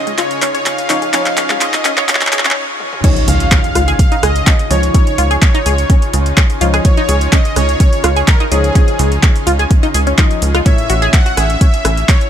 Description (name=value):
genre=progressive house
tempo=126 BPM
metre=4/4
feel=straight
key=Db major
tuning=A4 = 442 Hz
part: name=soft supersaw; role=melody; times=0.0-12.2 s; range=Ab4 to Gb5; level=-20 LUFS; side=equal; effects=sidechain pumping, ping-pong delay
part: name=shimmering ambient pad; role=sustained chords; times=0.0-12.3 s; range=Db3 to Ab4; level=-23 LUFS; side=equal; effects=chorus, built-in reverb, sidechain pumping
part: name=deep mellow chord stab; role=stabs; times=0.0-12.3 s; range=A2 to Eb5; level=-23 LUFS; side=left 3 dB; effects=chorus, sidechain pumping, ping-pong delay
part: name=tight sequencer bass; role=bass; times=0.0-12.0 s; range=A1 to Db2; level=-15 LUFS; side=equal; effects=sidechain pumping, high-pass filter
part: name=tight sequenced synth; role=arpeggios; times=0.1-12.1 s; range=Db3 to Ab5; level=-20 LUFS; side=equal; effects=chorus, vintage 12-bit sampler grit, sidechain pumping, ping-pong delay
part: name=deep house drum kit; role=drums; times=0.1-12.3 s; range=crash cymbal, handclaps, hi-hat, rim click, toms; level=-18 LUFS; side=equal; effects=none
part: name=electronic kick drum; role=drums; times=3.0-12.2 s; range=none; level=-10 LUFS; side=equal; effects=none
part: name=impact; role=sound effects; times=3.0-4.9 s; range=none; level=-21 LUFS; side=equal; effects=none
room=little or no reverb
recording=high-pass filter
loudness=-10 LUFS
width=side -9 dB against mid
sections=0.0-3.0 A section; 3.0-12.3 B section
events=build-up 0.0-3.0; drum fill 0.0-2.6, 2.8; break 2.6-3.0; drop 3.0-12.3; impact 3.0-4.9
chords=0.0 Dbadd9; 10.7 A